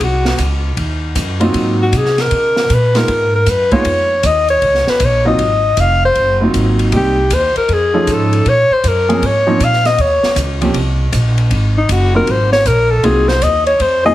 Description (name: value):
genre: jazz, small-group swing and bop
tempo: 157 BPM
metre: 4/4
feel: swing 66% on 8ths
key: Ab mixolydian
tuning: A4 = 441 Hz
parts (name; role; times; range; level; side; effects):
- breathy alto saxophone; melody; 0.0-14.1 s; Eb4 to F5; -13 LUFS; left 1 dB; none
- upright bass; bass; 0.0-14.1 s; F1 to Db3; -16 LUFS; right 1 dB; none
- open jazz drum kit; drums; 0.0-13.9 s; hi-hat, kick drum, ride cymbal, snare drum; -22 LUFS; equal; none
- warm baby grand piano; accompaniment; 1.4-14.1 s; F3 to A4; -16 LUFS; right 1 dB; none
room: moderate large studio reverb, RT60 1.0 s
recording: heavily compressed radio sound, multiband compression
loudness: -11 LUFS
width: side -14 dB against mid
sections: 0.0-14.1 A section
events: alto saxophone solo 0.0-14.1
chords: 0.0 Ab7 (rootless); 0.8 Ebm; 1.5 Ab13; 2.3 Db13; 5.4 Ab13; 6.9 Cm7; 7.7 F7alt; 8.5 Bbm7; 10.0 Eb7(no3); 11.5 Ab13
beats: 0.00 0.39 | 0.77 1.16 1.54 1.93 | 2.31 2.70 3.08 3.47 | 3.85 4.24 4.62 5.01 | 5.39 5.77 6.16 6.54 | 6.92 7.31 7.69 8.07 | 8.46 8.84 9.22 9.60 | 9.98 10.36 10.75 11.13 | 11.51 11.89 12.27 12.65 | 13.04 13.42 13.80